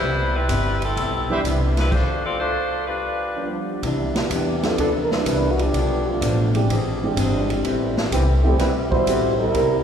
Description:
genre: jazz, big band swing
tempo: 126 BPM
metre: 4/4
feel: swing 69% on 8ths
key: C major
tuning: A4 = 441 Hz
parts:
  - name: clear saxophone section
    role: melody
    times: 0.0-3.6 s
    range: G3 to D5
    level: -24 LUFS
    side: left 1 dB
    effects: none
  - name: archtop guitar, miked and amplified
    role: accompaniment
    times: 0.0-9.8 s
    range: B2 to B4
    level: -28 LUFS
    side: left 3 dB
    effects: none
  - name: upright bass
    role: bass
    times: 0.0-9.8 s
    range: G1 to E2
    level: -23 LUFS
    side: equal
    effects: none
  - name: swinging big-band drum kit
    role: drums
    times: 0.5-9.7 s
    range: crash cymbal, hi-hat, kick drum, ride cymbal, snare drum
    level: -28 LUFS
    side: right 1 dB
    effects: none
  - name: warm upright piano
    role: accompaniment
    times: 1.3-8.6 s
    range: E3 to G4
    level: -29 LUFS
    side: right 2 dB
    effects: none
  - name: clear trumpet section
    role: stabs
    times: 1.3-1.4 s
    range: G4 to E5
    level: -31 LUFS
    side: right 1 dB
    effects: none
  - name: mellow trombone section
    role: second line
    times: 3.4-9.8 s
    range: B2 to C5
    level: -22 LUFS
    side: right 1 dB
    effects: none
room: wet church reverb, RT60 3.2 s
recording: recorded in a church or concert hall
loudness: -18 LUFS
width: side -8 dB against mid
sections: 0.0-3.8 A section; 3.8-9.8 B section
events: stop 1.9-3.8; trombone section solo 3.8-9.8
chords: 0.0 Cmaj7; 1.9 Dm7; 2.9 G7; 3.8 Cmaj9; 5.7 Bm7b5; 6.7 E7alt; 7.6 Am9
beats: | 0.02 0.50 0.97 1.45 | 1.93 2.40 2.88 3.36 | 3.84 4.31 4.79 5.26 | 5.74 6.22 6.69 7.17 | 7.64 8.12 8.60 9.07 | 9.55

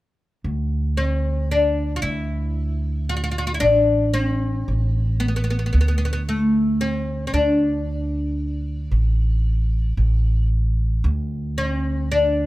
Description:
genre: Arabic maqam ensemble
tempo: 113 BPM (eighths)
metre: 10/8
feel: straight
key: D maqam rast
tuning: A4 = 440 Hz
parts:
  - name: upright bass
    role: bass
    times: 0.4-12.5 s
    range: A1 to D2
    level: -21 LUFS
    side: right 1 dB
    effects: none
  - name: oud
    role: melody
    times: 1.0-12.5 s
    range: A3 to F#4-50c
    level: -21 LUFS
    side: left 2 dB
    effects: none
room: little or no reverb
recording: close, detailed microphones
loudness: -19 LUFS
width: side -17 dB against mid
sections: 0.4-12.5 A section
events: none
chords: none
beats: | 0.45 0.98 1.51 2.04 2.57 3.10 3.62 4.16 4.68 5.21 | 5.74 6.28 6.80 7.33 7.87 8.40 8.93 9.46 9.99 10.52 | 11.05 11.58 12.11

